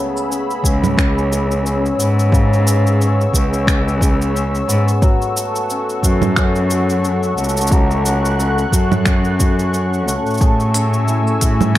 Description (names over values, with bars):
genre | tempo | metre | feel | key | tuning
folktronica | 89 BPM | 4/4 | swing 56% on 16ths | C# minor | A4 = 439 Hz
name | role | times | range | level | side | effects
warm analog pad | sustained chords | 0.0-11.8 s | A3 to F#6 | -23 LUFS | left 1 dB | chorus
hammered dulcimer | arpeggios | 0.0-11.8 s | C#3 to G#4 | -21 LUFS | left 1 dB | vintage 12-bit sampler grit, low-pass filter, tape echo
organic electronic drum kit | drums | 0.2-11.8 s | cabasa, congas, finger snaps, hi-hat | -21 LUFS | right 2 dB | overdrive
warm cello | bass | 0.6-11.8 s | C#2 to A2 | -17 LUFS | equal | tube saturation
electronic kick drum | drums | 0.6-11.8 s | none | -16 LUFS | equal | overdrive
room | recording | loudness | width
light reverb | none | -14 LUFS | side -14 dB against mid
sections
0.0-11.8 A section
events
none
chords
0.0 C#m7; 10.4 Amaj7